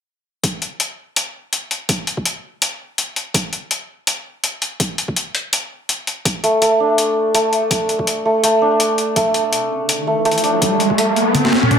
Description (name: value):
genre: half-time drum and bass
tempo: 165 BPM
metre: 4/4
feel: swing 56% on 16ths, half-time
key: unclear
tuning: A4 = 440 Hz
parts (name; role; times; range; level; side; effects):
- boom bap sampler-style drum kit; drums; 0.4-11.8 s; hi-hat, snare drum, toms; -19 LUFS; left 2 dB; overdrive
- electronic kick drum; drums; 0.4-11.0 s; none; -24 LUFS; equal; overdrive, high-pass filter on kick, high-pass filter on room
- santur; arpeggios; 6.4-11.8 s; A3 to D4; -16 LUFS; equal; vintage 12-bit sampler grit, ping-pong delay
- riser; sound effects; 9.7-11.8 s; none; -18 LUFS; right 1 dB; none
room: wet digital room reverb, RT60 1.1 s, digital ambience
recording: none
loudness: -16 LUFS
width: side -7 dB against mid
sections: 0.4-11.8 A section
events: riser 9.7-11.8; drum fill 11.3-11.8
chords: 0.4 Asus4